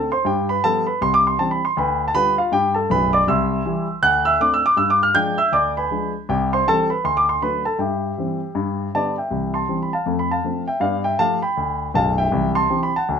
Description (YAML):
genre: jazz, stride piano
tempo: 159 BPM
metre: 4/4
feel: swing 61% on 8ths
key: C major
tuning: A4 = 443 Hz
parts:
  - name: dark concert grand piano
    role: solo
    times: 0.0-13.2 s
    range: B0 to G6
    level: -17 LUFS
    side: equal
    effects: none
room: moderate club reverb, RT60 0.5 s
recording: none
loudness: -17 LUFS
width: side -7 dB against mid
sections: 0.0-9.3 A section; 9.3-13.2 B section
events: none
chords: 0.3 G7; 1.0 C; 1.8 G7/D; 3.3 C; 4.0 D7; 4.8 G7b9; 6.3 C; 7.0 D; 7.8 C/G; 8.5 G; 9.3 C; 10.1 F; 10.8 G9; 12.3 C